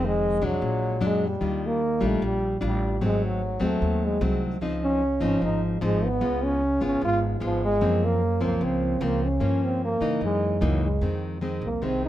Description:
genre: bossa nova.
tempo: 150 BPM.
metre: 4/4.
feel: straight.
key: unclear.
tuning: A4 = 436 Hz.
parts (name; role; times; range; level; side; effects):
mellow trombone; melody; 0.0-12.1 s; F3 to F4; -26 LUFS; equal; none.
nylon-string guitar; accompaniment; 0.0-12.1 s; F2 to F4; -27 LUFS; left 1 dB; none.
upright bass; bass; 0.0-12.1 s; F1 to Db3; -29 LUFS; right 1 dB; none.
room: light reverb.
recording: minimal, uncompressed stereo recording.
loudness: -22 LUFS.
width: side -13 dB against mid.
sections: 0.0-12.1 A section.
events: none.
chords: 0.0 Fm7; 0.6 Bbaug7; 1.4 Ebmaj9; 3.0 Ab7b9; 4.6 Dbmaj9; 6.2 Db7; 7.8 Gbmaj7#11; 9.4 Gm7b5; 10.2 Gb13; 11.0 Fm7.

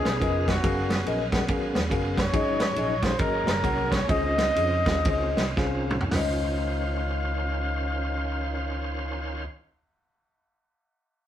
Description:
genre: uptempo gospel.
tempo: 106-142 BPM.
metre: 4/4.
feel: swing 62% on 8ths.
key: Db major.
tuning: A4 = 444 Hz.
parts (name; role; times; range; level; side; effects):
breathy flugelhorn; melody; 0.0-9.5 s; Gb4 to F5; -29 LUFS; equal; none.
mellow tine electric piano; accompaniment; 0.0-9.5 s; Db2 to Gb5; -30 LUFS; left 3 dB; fast stereo tremolo.
bright tonewheel organ; sustained chords; 0.0-9.4 s; Eb3 to F5; -33 LUFS; right 2 dB; fast rotary speaker, overdrive, chorus vibrato.
fingered electric bass; bass; 0.0-9.4 s; F1 to F2; -30 LUFS; equal; none.
warm soul drum kit; drums; 0.1-6.3 s; hi-hat, kick drum, ride cymbal, snare drum, toms; -27 LUFS; right 1 dB; none.
room: wet studio reverb, RT60 0.6 s.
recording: band playing live in one room.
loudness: -23 LUFS.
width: side -11 dB against mid.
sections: 0.0-6.1 A section; 6.1-10.6 B section.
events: slowing down 2.3-6.1; drum fill 5.6-6.1.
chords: 0.0 Cbmaj9#11; 0.6 Gbmaj9; 2.3 Ab7sus4; 3.2 Ab9sus4; 4.1 Dbmaj9.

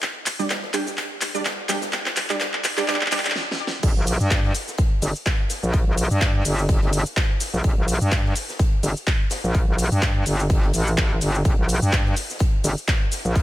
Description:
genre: bass house.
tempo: 126 BPM.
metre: 4/4.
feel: swing 56% on 16ths.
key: G minor.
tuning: A4 = 442 Hz.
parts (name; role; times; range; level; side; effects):
big-room dance drum kit; drums; 0.0-13.4 s; crash cymbal, handclaps, hi-hat, shaker, snare drum; -25 LUFS; equal; none.
oversized low-tuned drum kit; drums; 0.0-13.4 s; hi-hat, snare drum; -35 LUFS; left 2 dB; sidechain pumping on hats, high-pass filter on hats, high-pass filter on snare, high-pass filter on room.
orchestra-hit-like synth stab; stabs; 0.4-3.2 s; G3 to G5; -27 LUFS; right 3 dB; built-in reverb, vintage 12-bit sampler grit, sidechain pumping, ping-pong delay.
metallic wobble bass; bass; 3.8-13.4 s; G1 to G2; -21 LUFS; equal; chorus, tube saturation, sidechain pumping.
electronic kick drum; drums; 3.8-13.4 s; none; -20 LUFS; equal; none.
room: little or no reverb.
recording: high-pass filter.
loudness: -19 LUFS.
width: side -15 dB against mid.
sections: 0.0-3.8 A section; 3.8-13.4 B section.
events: build-up 0.0-3.8; drum fill 0.0-3.4, 3.4-3.8; filter sweep on synth stab 0.0-3.8; stop 3.4-3.8; drop 3.8-13.4.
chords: 0.0 G5; 3.8 Gm.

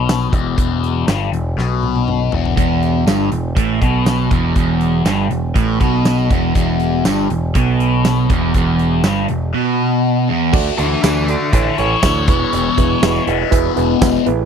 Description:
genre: classic rock.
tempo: 120 BPM.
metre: 4/4.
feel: straight.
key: E mixolydian.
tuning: A4 = 441 Hz.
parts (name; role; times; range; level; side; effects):
cranked stack guitar; riff; 0.0-14.3 s; E2 to F#4; -19 LUFS; left 11 dB; overdrive, phaser.
growling picked electric bass; bass; 0.0-14.4 s; E1 to D2; -20 LUFS; equal; overdrive.
huge arena drum kit; drums; 0.1-14.4 s; crash cymbal, hi-hat, kick drum, snare drum, tambourine, toms; -19 LUFS; equal; none.
crunchy overdriven guitar; riff; 2.6-10.5 s; E2 to B2; -18 LUFS; right 12 dB; none.
reed electric piano; accompaniment; 10.5-14.5 s; E4 to D5; -20 LUFS; right 20 dB; none.
octave-fuzz lead guitar; melody; 10.8-13.2 s; A4 to E5; -20 LUFS; right 2 dB; distortion, slapback echo.
room: little or no reverb.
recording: dry, close 1970s-style studio recording.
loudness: -13 LUFS.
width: side -7 dB against mid.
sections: 0.0-10.5 A section; 10.5-14.5 B section.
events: drum fill 1.6-2.6; lead electric guitar solo 10.5-14.5.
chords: 0.0 E5; 10.5 D; 11.5 A; 12.3 E.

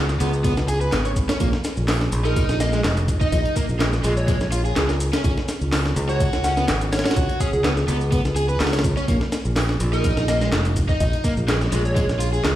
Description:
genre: breakbeat, breaks.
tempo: 125 BPM.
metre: 4/4.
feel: swing 53% on 16ths.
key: Bb phrygian.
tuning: A4 = 440 Hz.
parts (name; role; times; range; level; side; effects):
fingered electric bass; bass; 0.0-12.6 s; F1 to Db2; -22 LUFS; equal; none.
breakbeat sampler-style drum kit; drums; 0.1-12.6 s; hi-hat, kick drum, snare drum; -23 LUFS; equal; small room reverb.
electronic shaker and handclaps; drums; 0.1-12.5 s; none; -31 LUFS; equal; small room reverb.
overdriven electric guitar; riff; 0.2-12.5 s; Ab3 to Db5; -26 LUFS; right 1 dB; tape echo.
plucky unison lead; melody; 2.2-12.2 s; Ab4 to Gb5; -29 LUFS; equal; old record sound, tape echo.
room: light reverb, digital ambience.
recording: played on a big sound system in a bare room, stone room reverb, vinyl crackle.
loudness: -18 LUFS.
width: side -13 dB against mid.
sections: 0.0-12.6 A section.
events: none.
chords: 0.0 Db5; 1.4 Bb7(no3); 5.0 Db5; 9.1 Bb7(no3).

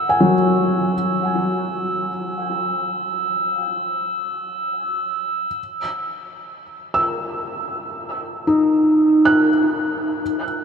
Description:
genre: ambient.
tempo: free time.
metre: none.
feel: none.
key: unclear.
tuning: A4 = 437 Hz.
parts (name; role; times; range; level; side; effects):
felt-muted upright piano; arpeggios; 0.0-10.6 s; F#3 to F#6; -18 LUFS; equal; diffuse ambient delay.
glass harmonica; texture; 0.0-5.6 s; E6; -24 LUFS; right 2 dB; none.
room: wet huge ambient reverb, RT60 6.9 s.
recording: dark, warm production.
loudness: -18 LUFS.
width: side -6 dB against mid.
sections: 0.0-5.6 A section; 5.6-10.6 A section.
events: none.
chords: 0.0 Eadd9/F#; 5.6 D#m.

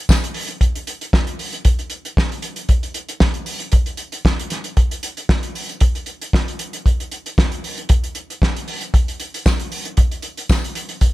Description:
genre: disco.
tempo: 115 BPM.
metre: 4/4.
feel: straight.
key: none.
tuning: none.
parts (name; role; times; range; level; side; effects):
warm soul drum kit; drums; 0.1-11.1 s; hi-hat, kick drum, snare drum; -17 LUFS; equal; none.
tambourine; percussion; 0.1-0.2, 9.5-10.6 s; none; -30 LUFS; left 5 dB; none.
room: little or no reverb.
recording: none.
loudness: -18 LUFS.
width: side -17 dB against mid.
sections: 0.6-11.1 A section.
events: none.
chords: none.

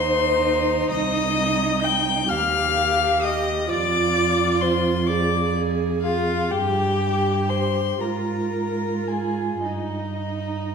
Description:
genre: classical, slow romantic movement for string quartet.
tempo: 34-44 BPM (dotted quarters).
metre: 6/8.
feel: rubato.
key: unclear.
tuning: A4 = 440 Hz.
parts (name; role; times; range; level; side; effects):
warm violin; melody; 0.0-10.7 s; Eb5 to G6; -25 LUFS; left 8 dB; none.
dark violin; second line; 0.0-10.7 s; Eb4 to G5; -25 LUFS; left 1 dB; none.
warm viola; accompaniment; 0.0-10.7 s; Eb4 to Ab4; -26 LUFS; right 3 dB; none.
dark cello; bass; 0.0-10.7 s; C2 to Ab2; -26 LUFS; right 4 dB; none.
room: wet recital hall reverb, RT60 1.4 s.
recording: none.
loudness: -20 LUFS.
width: side -6 dB against mid.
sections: 0.0-10.7 A section.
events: none.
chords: 0.0 Cm/Eb; 0.9 Cm; 2.3 Ebadd9; 3.7 Ddim/F; 6.5 Gsus4; 8.0 Fm/Ab; 9.6 Eb/G.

